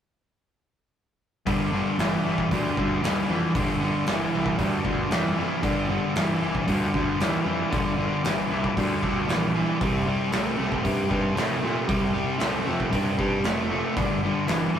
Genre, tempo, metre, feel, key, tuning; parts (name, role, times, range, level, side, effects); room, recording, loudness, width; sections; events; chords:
blues rock power trio and southern rock; 115 BPM; 4/4; straight; G minor; A4 = 440 Hz
overdriven tonewheel organ; sustained chords; 1.5-14.8 s; C4 to D5; -38 LUFS; right 2 dB
overdriven electric guitar; riff; 1.5-14.8 s; G2 to A3; -24 LUFS; equal
fuzz picked electric bass; bass; 1.5-14.8 s; F1 to Bb2; -31 LUFS; equal; overdrive
big rock drum kit; drums; 1.5-14.6 s; hi-hat, kick drum, snare drum; -30 LUFS; equal
wet stone room reverb, RT60 1.3 s; rough rehearsal-room recording; -22 LUFS; side -9 dB against mid
1.5-14.8 A section
1.5 Gm7; 9.8 Cm7; 14.0 Gm7